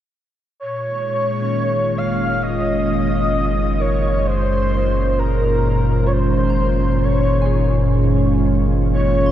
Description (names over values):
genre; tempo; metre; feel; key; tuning
ambient; 65 BPM; 4/4; straight; Gb lydian; A4 = 440 Hz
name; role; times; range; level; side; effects
breathy flute-like synth lead; melody; 0.6-9.3 s; Bb4 to F5; -22 LUFS; equal; ensemble chorus, tape echo
soft additive organ-like pad; sustained chords; 0.7-9.3 s; Bb2 to F4; -19 LUFS; equal; ensemble chorus, built-in reverb
deep rumbling drone; bass; 2.2-9.3 s; Gb1; -20 LUFS; equal; built-in reverb
soft synth bell; arpeggios; 1.4-9.3 s; Db4 to C6; -36 LUFS; right 2 dB; none
room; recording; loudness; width
moderate huge ambient reverb, RT60 7.7 s; none; -16 LUFS; side -11 dB against mid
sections
0.6-9.3 A section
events
filter sweep on ambient pad 0.6-9.3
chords
0.6 Gb